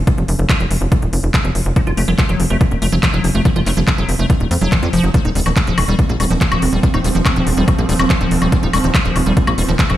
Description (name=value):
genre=psychedelic trance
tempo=142 BPM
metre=4/4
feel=straight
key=unclear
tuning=A4 = 438 Hz
part: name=tight sequencer bass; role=bass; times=0.0-10.0 s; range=Eb1 to F2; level=-17 LUFS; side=equal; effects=none
part: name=electronic kick drum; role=drums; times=0.1-9.9 s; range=none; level=-14 LUFS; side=equal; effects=small room ambience
part: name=techno drum kit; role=drums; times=0.1-10.0 s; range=handclaps, hi-hat, woodblock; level=-22 LUFS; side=left 1 dB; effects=small room ambience
part: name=liquid acid bass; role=riff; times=1.8-10.0 s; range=Eb3 to F4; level=-20 LUFS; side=left 1 dB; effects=chorus, auto-pan, sidechain pumping, ping-pong delay
part: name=swarming drone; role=sustained chords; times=5.9-10.0 s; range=F3 to C4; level=-21 LUFS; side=right 3 dB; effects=built-in reverb, sidechain pumping
room=little or no reverb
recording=played on a big sound system in a bare room, large studio reverb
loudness=-13 LUFS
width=side -13 dB against mid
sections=0.0-10.0 A section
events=none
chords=0.0 F5; 5.1 Eb5